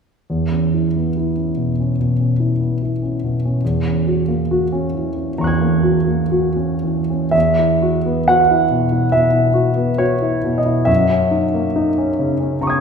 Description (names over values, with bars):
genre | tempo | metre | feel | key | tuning
classical, impressionist solo piano | 55-75 BPM | 4/4 | rubato | E major | A4 = 436 Hz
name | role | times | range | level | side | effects
warm concert grand piano | solo | 0.3-12.8 s | E2 to G#6 | -15 LUFS | equal | none
room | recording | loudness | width
wet scoring stage reverb, RT60 2.0 s | recorded in a church or concert hall | -15 LUFS | side -6 dB against mid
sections
0.3-7.3 A section; 7.3-12.8 B section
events
none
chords
0.3 E5; 3.6 F#9/E; 7.3 Esus2; 10.9 F#13